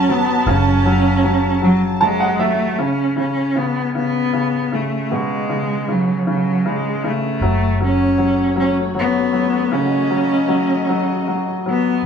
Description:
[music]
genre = six-eight pop ballad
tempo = 52 BPM (dotted quarters)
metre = 6/8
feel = straight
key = unclear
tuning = A4 = 441 Hz
[part]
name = clear cello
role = melody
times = 0.0-12.1 s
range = F#3 to C#4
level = -18 LUFS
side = equal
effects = none
[part]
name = bright upright piano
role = accompaniment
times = 0.0-12.1 s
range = B2 to A5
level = -20 LUFS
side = left 1 dB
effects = none
[part]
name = dark studio string section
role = sustained chords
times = 0.0-2.7, 7.4-12.0 s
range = F#3 to A5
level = -24 LUFS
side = equal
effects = none
[part]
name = vintage muted fingered electric bass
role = bass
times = 0.0-2.7, 7.4-9.7 s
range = F#1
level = -21 LUFS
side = equal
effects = none
[sound]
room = moderate stone room reverb, RT60 1.0 s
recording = band playing live in one room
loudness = -15 LUFS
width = side -7 dB against mid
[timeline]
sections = 0.0-2.8 A section; 2.8-12.0 B section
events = upright piano fill 1.6-2.8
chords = 0.0 F#m; 2.8 C#5; 7.4 F#m

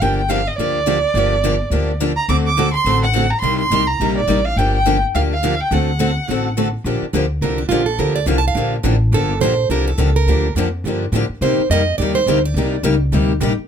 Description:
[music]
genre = acoustic string swing (jazz manouche)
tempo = 211 BPM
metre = 4/4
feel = swing 59% on 8ths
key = G minor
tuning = A4 = 439 Hz
[part]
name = warm violin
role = melody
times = 0.0-6.6 s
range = D5 to D6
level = -19 LUFS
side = right 2 dB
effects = none
[part]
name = picked steel-string acoustic guitar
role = accompaniment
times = 0.0-13.5 s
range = C3 to A4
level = -22 LUFS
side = left 8 dB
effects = none
[part]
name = picked steel-string acoustic guitar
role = accompaniment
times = 0.0-13.5 s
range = C3 to A4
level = -24 LUFS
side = right 9 dB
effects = none
[part]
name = upright bass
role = bass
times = 0.0-13.6 s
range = G1 to C3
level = -19 LUFS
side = equal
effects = none
[part]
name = picked plugged-in steel-string acoustic guitar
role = second line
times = 7.4-12.8 s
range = D4 to A5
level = -20 LUFS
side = right 6 dB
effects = none
[sound]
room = light reverb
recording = none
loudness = -15 LUFS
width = side -8 dB against mid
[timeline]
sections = 0.0-6.8 A section; 6.8-13.7 B section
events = steel-string acoustic guitar solo 6.8-13.7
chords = 0.0 Gm7; 2.3 D7; 3.4 Cm9; 4.6 Gm7; 5.7 D7; 6.8 Gm7; 11.4 Cm9

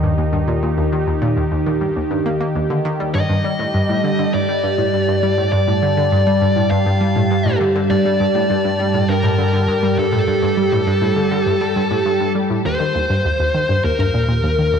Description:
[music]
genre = ambient, sequencer-driven space music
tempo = 101 BPM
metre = 4/4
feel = straight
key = G minor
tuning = A4 = 436 Hz
[part]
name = phased analog pad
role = sustained chords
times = 0.0-14.8 s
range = Eb3 to A5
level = -20 LUFS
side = right 1 dB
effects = phaser, chorus
[part]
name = analog pluck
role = riff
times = 0.0-14.8 s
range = Eb2 to Bb3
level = -20 LUFS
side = equal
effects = chorus, ping-pong delay
[part]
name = analog drone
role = bass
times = 0.0-14.8 s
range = Eb2 to G2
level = -23 LUFS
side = equal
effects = chorus
[part]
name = high-gain lead guitar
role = melody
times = 3.2-14.8 s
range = A4 to F5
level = -20 LUFS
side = left 2 dB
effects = distortion, ping-pong delay
[part]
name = bubbling stepped-filter texture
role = texture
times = 13.2-14.8 s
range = F5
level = -41 LUFS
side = right 1 dB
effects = none
[sound]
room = wet plate reverb, RT60 3.4 s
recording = dark, warm production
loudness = -15 LUFS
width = side -7 dB against mid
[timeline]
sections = 0.0-12.7 A section; 12.7-14.8 A section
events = none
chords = 0.0 Eb; 3.1 Gsus2; 12.7 Eb

